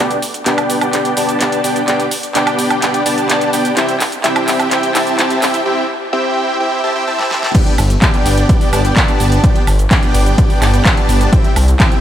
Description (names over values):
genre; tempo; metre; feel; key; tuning
EDM, festival progressive house; 127 BPM; 4/4; straight; G major; A4 = 440 Hz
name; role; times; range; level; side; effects
dense compressed supersaw; riff; 0.0-12.0 s; B3 to A5; -15 LUFS; equal; sidechain pumping, low-pass filter, digital delay
pop drum kit; drums; 0.1-12.0 s; crash cymbal, handclaps, hi-hat, shaker, snare drum, woodblock; -18 LUFS; right 1 dB; studio reverb
electronic kick drum; drums; 7.5-11.9 s; none; -13 LUFS; equal; overdrive, studio reverb
wide detuned saw bass; bass; 7.8-11.7 s; G1 to C2; -13 LUFS; equal; chorus, sidechain pumping
room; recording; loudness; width
light reverb; high-pass filter; -11 LUFS; side -10 dB against mid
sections
0.0-7.5 A section; 7.5-12.0 B section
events
build-up 0.0-7.5; drum fill 0.0-5.7, 7.2-7.5; filter sweep on supersaw synth 0.0-7.5; break 5.7-7.5; drop 7.5-12.0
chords
0.0 G; 3.8 C; 7.5 G; 11.3 C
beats
0.46 0.93 1.41 | 1.88 2.35 2.82 3.29 | 3.77 4.24 4.71 5.18 | 5.66 6.13 6.60 7.08 | 7.55 8.02 8.49 8.96 | 9.44 9.91 10.38 10.85 | 11.33 11.80